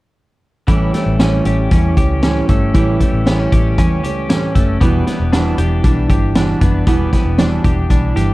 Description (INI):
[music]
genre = jangly indie pop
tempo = 116 BPM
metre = 4/4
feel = straight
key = A mixolydian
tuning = A4 = 439 Hz
[part]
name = fingerpicked steel-string acoustic guitar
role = accompaniment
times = 0.7-8.3 s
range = E2 to G4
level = -18 LUFS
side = right 3 dB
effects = none
[part]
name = twelve-string electric guitar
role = arpeggios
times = 0.7-8.3 s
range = E3 to G4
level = -20 LUFS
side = left 3 dB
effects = none
[part]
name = vintage muted picked electric bass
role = bass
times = 0.7-8.3 s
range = E1 to E2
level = -17 LUFS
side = equal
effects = none
[part]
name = vintage drum kit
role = drums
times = 0.7-8.3 s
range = hi-hat, kick drum, snare drum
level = -16 LUFS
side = equal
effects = none
[sound]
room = light reverb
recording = dark, warm production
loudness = -12 LUFS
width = side -19 dB against mid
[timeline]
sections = 0.7-8.3 A section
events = none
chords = 0.7 A7; 4.8 Em7